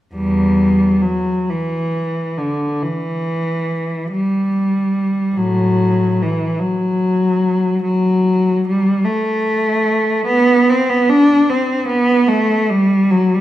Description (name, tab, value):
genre	classical, free, expressive piece for unaccompanied cello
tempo	44-51 BPM (dotted quarters)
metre	6/8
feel	rubato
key	E minor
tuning	A4 = 438 Hz
part	clear cello	solo	0.1-13.4 s	E2 to D4	-14 LUFS	equal	none
room	wet recital hall reverb, RT60 1.4 s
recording	minimal, uncompressed stereo recording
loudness	-14 LUFS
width	side -13 dB against mid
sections	0.1-13.4 A section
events	none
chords	none